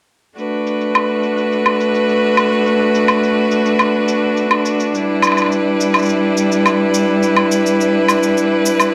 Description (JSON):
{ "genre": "folktronica", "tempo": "105 BPM", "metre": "4/4", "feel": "straight", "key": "unclear", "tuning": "A4 = 440 Hz", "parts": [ { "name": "clear string quartet", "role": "sustained chords", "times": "0.4-8.9 s", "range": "G3 to B4", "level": "-16 LUFS", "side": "equal", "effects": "vintage 12-bit sampler grit" }, { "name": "shaker and woodblock", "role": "drums", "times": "0.4-8.9 s", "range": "none", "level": "-20 LUFS", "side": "equal", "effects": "low-pass filter on perc, low-pass filter on room" } ], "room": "moderate echo chamber reverb, RT60 2.2 s", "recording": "none", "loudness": "-15 LUFS", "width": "mono", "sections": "0.4-8.9 A section", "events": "none", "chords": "0.4 Bm7; 4.9 Em7" }